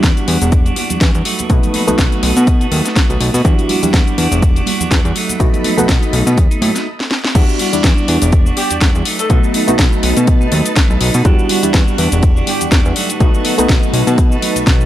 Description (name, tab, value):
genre	filtered disco house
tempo	123 BPM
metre	4/4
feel	swing 56% on 16ths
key	E minor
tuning	A4 = 441 Hz
part	reed electric piano	accompaniment	0.0-14.9 s	G3 to F#4	-19 LUFS	equal	phaser, sidechain pumping, low-pass filter
part	string machine, full ensemble	sustained chords	0.0-14.9 s	G3 to D#6	-24 LUFS	equal	ensemble chorus, sidechain pumping, low-pass filter
part	clean electric guitar	riff	0.0-14.9 s	F#3 to F#4	-22 LUFS	right 5 dB	sidechain pumping, low-pass filter
part	fat analog bass	bass	0.0-14.9 s	E1 to B2	-16 LUFS	equal	sidechain pumping, low-pass filter
part	electronic kick drum	drums	0.0-14.8 s	none	-12 LUFS	equal	overdrive, studio reverb
part	house drum kit	drums	0.0-14.9 s	cabasa, crash cymbal, hi-hat, snare drum	-19 LUFS	left 2 dB	overdrive, sidechain pumping on hats, studio reverb, sidechain pumping on perc, sidechain pumping on cymbals
part	tambourine and congas	percussion	0.0-6.8 s	none	-26 LUFS	right 5 dB	none
part	warm horn section	melody	8.6-9.4, 12.5-12.6 s	G4 to A4	-23 LUFS	equal	sidechain pumping, low-pass filter, analog delay
room	little or no reverb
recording	dry, gritty hardware recording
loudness	-11 LUFS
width	side -13 dB against mid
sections	0.0-7.4 A section; 7.4-14.9 B section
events	stop 6.9-7.4; drum fill 7.0-7.4; band accent 7.2; drop 7.4-14.9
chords	0.0 Em9; 1.3 B7; 3.5 Em9; 5.2 B7; 7.4 Em9; 9.1 B7; 11.3 Em9; 13.0 B7